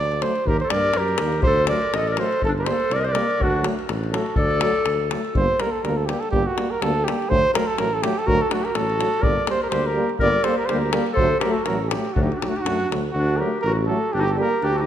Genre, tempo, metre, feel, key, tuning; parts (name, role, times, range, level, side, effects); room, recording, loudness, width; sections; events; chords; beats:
balkan folk, Balkan brass band; 123 BPM; 2/4; swing 55% on 16ths; D phrygian dominant; A4 = 441 Hz
mellow flugelhorn; melody; 0.0-14.9 s; F#4 to Eb5; -23 LUFS; right 2 dB
mellow tuba; bass; 0.0-14.9 s; G1 to G2; -26 LUFS; equal
davul; percussion; 0.1-13.0 s; -26 LUFS; left 2 dB
mellow French horn; accompaniment; 0.2-14.5 s; A3 to Bb3; -30 LUFS; left 4 dB
warm euphonium; accompaniment; 0.2-14.5 s; F#3 to G3; -31 LUFS; right 5 dB
clear clarinet; second line; 0.5-5.1, 8.3-14.9 s; D4 to C5; -26 LUFS; left 4 dB; tape echo
moderate scoring stage reverb, RT60 1.7 s; -19 LUFS; side -10 dB against mid
0.0-5.4 A section; 5.4-13.2 B section; 13.2-14.9 A section
0.5 Eb; 1.4 D; 2.4 Gm; 3.4 D; 5.4 Gm; 7.3 D; 9.3 Gm; 11.2 D; 14.1 Gm
| 0.46 0.95 | 1.44 1.93 | 2.42 2.91 | 3.40 3.88 | 4.37 4.86 | 5.35 5.84 | 6.33 6.82 | 7.30 7.79 | 8.28 8.77 | 9.26 9.74 | 10.23 10.72 | 11.21 11.69 | 12.18 12.67 | 13.15 13.64 | 14.13 14.61